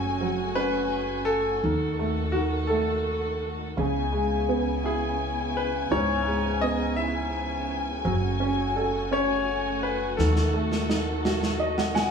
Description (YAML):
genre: six-eight pop ballad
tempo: 56 BPM (dotted quarters)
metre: 6/8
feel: straight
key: C# minor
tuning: A4 = 440 Hz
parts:
  - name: clear upright piano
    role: accompaniment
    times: 0.0-12.1 s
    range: G#2 to G#5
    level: -28 LUFS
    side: right 2 dB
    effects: none
  - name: dark studio string section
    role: sustained chords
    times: 0.0-12.1 s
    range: C#3 to G#5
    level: -31 LUFS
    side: left 1 dB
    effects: none
  - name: upright bass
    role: bass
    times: 0.0-12.1 s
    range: F#1 to D#2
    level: -31 LUFS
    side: left 1 dB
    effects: none
  - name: bright grand piano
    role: melody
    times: 0.6-12.1 s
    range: F#4 to F#5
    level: -28 LUFS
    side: left 3 dB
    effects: none
  - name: snare drum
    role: drums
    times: 10.2-12.1 s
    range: none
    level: -28 LUFS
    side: right 1 dB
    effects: none
room: moderate studio reverb, RT60 0.8 s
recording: band playing live in one room, studio reverb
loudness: -24 LUFS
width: side -6 dB against mid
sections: 0.0-12.1 A section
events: drum fill 10.2-12.1; upright piano fill 11.2-12.1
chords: 0.0 F#madd9; 1.6 D#dim; 3.8 C#m7; 8.0 F#madd9; 10.2 D#dim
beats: 0.56 | 1.63 2.70 | 3.77 4.84 | 5.91 6.98 | 8.04 9.11 | 10.18 11.25